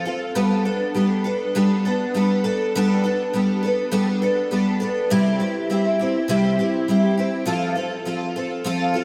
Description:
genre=rock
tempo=102 BPM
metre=4/4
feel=straight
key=G mixolydian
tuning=A4 = 440 Hz
part: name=picked twelve-string acoustic guitar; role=solo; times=0.0-9.0 s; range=C3 to A4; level=-21 LUFS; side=equal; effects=ensemble chorus, tape echo
room=wet lush hall reverb, RT60 2.8 s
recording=dreamy mix soaked in reverb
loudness=-21 LUFS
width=mono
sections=0.0-9.0 A section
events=none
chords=0.4 Gadd9; 5.1 C; 7.5 F

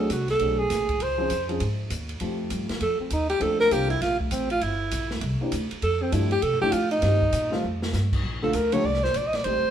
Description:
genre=jazz, small-group swing and bop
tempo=199 BPM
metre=4/4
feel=swing 63% on 8ths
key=F major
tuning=A4 = 440 Hz
part: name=breathy alto saxophone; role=second line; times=0.0-9.7 s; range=A3 to Eb5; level=-24 LUFS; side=right 1 dB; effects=none
part: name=dark baby grand piano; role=accompaniment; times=0.0-9.6 s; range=D3 to A4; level=-29 LUFS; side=left 1 dB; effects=none
part: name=upright bass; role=bass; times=0.0-9.7 s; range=G1 to C3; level=-28 LUFS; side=equal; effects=none
part: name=open jazz drum kit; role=drums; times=0.1-9.5 s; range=crash cymbal, hi-hat, kick drum, ride cymbal, snare drum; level=-33 LUFS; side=equal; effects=none
room=moderate stone room reverb, RT60 1.1 s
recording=band playing live in one room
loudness=-22 LUFS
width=side -9 dB against mid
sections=0.0-8.2 A section; 8.2-9.7 A section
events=alto saxophone solo 0.0-9.7; drum fill 7.6-7.9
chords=0.0 D7#11; 1.0 Dbmaj9; 2.2 F9; 3.4 Bbmaj9; 4.6 Gm; 5.2 C9; 5.8 Fmaj13; 7.0 Cm7; 7.6 Fsus2; 8.2 Bbmaj7

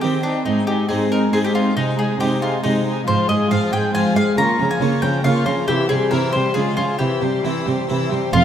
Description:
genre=classical, baroque-style concerto movement with solo episodes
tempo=138 BPM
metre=3/4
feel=straight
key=unclear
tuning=A4 = 441 Hz
part: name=mandolin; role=melody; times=0.0-8.4 s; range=D4 to Bb5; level=-22 LUFS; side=left 1 dB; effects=none
part: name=rich chamber violin section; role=melody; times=0.0-8.4 s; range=F5 to E6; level=-31 LUFS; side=left 5 dB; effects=none
part: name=warm chamber violin section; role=second line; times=0.0-8.4 s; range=Db4 to Ab4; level=-26 LUFS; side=left 2 dB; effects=none
part: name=harpsichord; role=accompaniment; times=0.0-8.4 s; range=F2 to F4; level=-23 LUFS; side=left 1 dB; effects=none
part: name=warm chamber viola section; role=accompaniment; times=0.0-8.4 s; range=E3 to F4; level=-24 LUFS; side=right 1 dB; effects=none
part: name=warm chamber cello section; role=bass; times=0.0-8.4 s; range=F2 to Eb3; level=-22 LUFS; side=right 3 dB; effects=none
part: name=rich chamber double bass section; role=bass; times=8.3-8.4 s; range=F1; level=-18 LUFS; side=right 6 dB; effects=none
room=wet concert hall reverb, RT60 2.0 s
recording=none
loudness=-16 LUFS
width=side -9 dB against mid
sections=0.0-8.3 A section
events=none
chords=0.5 Ab; 1.8 Ab/C; 3.1 Fm/Ab; 4.4 Bbm/Db; 5.7 C; 6.6 Db; 7.0 C

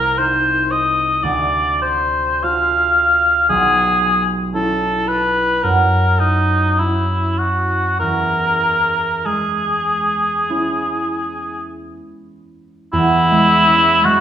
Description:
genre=classical, impressionist duo for cor anglais and harp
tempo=47-58 BPM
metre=4/4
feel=rubato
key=unclear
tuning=A4 = 440 Hz
part: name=warm cor anglais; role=melody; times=0.0-14.2 s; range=D#4 to F5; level=-15 LUFS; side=equal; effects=none
part: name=concert harp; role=accompaniment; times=0.0-14.2 s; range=B1 to A#4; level=-20 LUFS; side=right 1 dB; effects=none
room=wet recital hall reverb, RT60 1.3 s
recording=recorded in a church or concert hall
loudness=-14 LUFS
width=side -9 dB against mid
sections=0.0-12.9 A section; 12.9-14.2 B section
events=none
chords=0.0 Cm7; 1.2 Dm; 3.5 B11; 5.6 F#5; 8.0 E6

